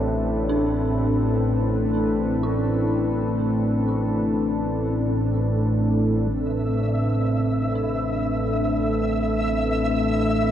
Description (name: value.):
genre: dark ambient drone.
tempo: 62 BPM.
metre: 4/4.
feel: straight.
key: A minor.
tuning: A4 = 440 Hz.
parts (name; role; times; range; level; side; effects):
deep dark ambient pad; sustained chords; 0.0-10.5 s; C4 to B4; -25 LUFS; left 1 dB; chorus, built-in reverb.
analog drone; drone; 0.0-10.5 s; A1 to A2; -23 LUFS; equal; chorus.
dark detuned synth bell; arpeggios; 0.5-10.5 s; D4 to E4; -33 LUFS; right 2 dB; chorus, phaser, diffuse ambient delay.
flickering grainy texture; texture; 6.5-10.5 s; E5; -28 LUFS; equal; built-in reverb.
room: wet huge ambient reverb, RT60 7.5 s.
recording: none.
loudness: -20 LUFS.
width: side -10 dB against mid.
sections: 0.0-6.3 A section; 6.3-10.5 B section.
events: filter sweep on synth drone 6.3-10.5.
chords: 0.0 Amadd9.